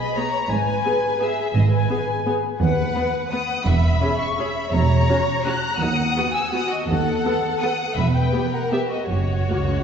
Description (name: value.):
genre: classical, orchestral ballroom waltz.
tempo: 141-186 BPM.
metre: 3/4.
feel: rubato.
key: B major.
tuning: A4 = 442 Hz.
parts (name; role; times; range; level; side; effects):
rich symphonic violin section; melody; 0.0-9.8 s; C#5 to F#6; -26 LUFS; left 3 dB; none.
warm symphonic violin section; second line; 0.0-9.8 s; F#4 to A#5; -26 LUFS; left 2 dB; none.
rich symphonic viola section; accompaniment; 0.2-9.6 s; A#3 to B4; -28 LUFS; right 1 dB; none.
rich symphonic double bass section; bass; 0.5-9.4 s; E1 to D#2; -24 LUFS; right 2 dB; none.
warm symphonic cello section; bass; 0.5-9.8 s; C#2 to G#2; -26 LUFS; right 2 dB; none.
timpani; percussion; 9.1-9.8 s; F#2; -27 LUFS; right 2 dB; none.
room: wet concert hall reverb, RT60 2.1 s.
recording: heard from further back in the room, nothing above 7.8 kHz.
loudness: -19 LUFS.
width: side -7 dB against mid.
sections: 0.0-9.8 A section.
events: timpani fill 9.1-9.8.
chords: 0.0 G#m; 2.6 B/D#; 3.7 C#m7/E; 4.7 F#7/E; 5.8 B/D#; 6.9 B7/D#; 8.0 Em; 9.1 F#5.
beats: 0.17 | 0.52 0.85 1.21 | 1.56 1.91 2.27 | 2.61 2.96 3.32 | 3.67 4.02 4.39 | 4.74 5.09 5.46 | 5.81 6.17 6.54 | 6.89 7.25 7.63 | 7.98 8.33 8.72 | 9.09 9.49.